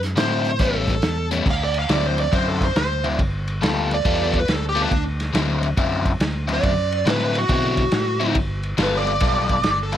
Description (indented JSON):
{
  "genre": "electric blues shuffle",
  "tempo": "139 BPM",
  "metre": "4/4",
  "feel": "swing 66% on 8ths",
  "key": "D mixolydian",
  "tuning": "A4 = 440 Hz",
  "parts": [
    { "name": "fingered electric bass", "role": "bass", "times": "0.0-10.0 s", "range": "G1 to B2", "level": "-25 LUFS", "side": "equal", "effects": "none" },
    { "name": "vintage drum kit", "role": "drums", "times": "0.0-10.0 s", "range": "crash cymbal, hi-hat, kick drum, ride cymbal, snare drum", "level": "-24 LUFS", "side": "equal", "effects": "none" },
    { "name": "dark smooth lead guitar", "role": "melody", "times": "0.2-9.9 s", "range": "D4 to F5", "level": "-23 LUFS", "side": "right 2 dB", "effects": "overdrive" },
    { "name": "crunchy overdriven guitar", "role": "riff", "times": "0.2-10.0 s", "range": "A2 to A4", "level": "-23 LUFS", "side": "left 4 dB", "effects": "phaser" }
  ],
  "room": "light reverb",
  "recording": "none",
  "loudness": "-18 LUFS",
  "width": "side -10 dB against mid",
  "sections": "0.0-1.5 A section; 1.5-10.0 B section",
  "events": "lead electric guitar solo 1.5-10.0",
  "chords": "0.0 D9; 0.6 A9; 1.5 D9; 3.2 G9; 4.9 D9; 8.4 G9"
}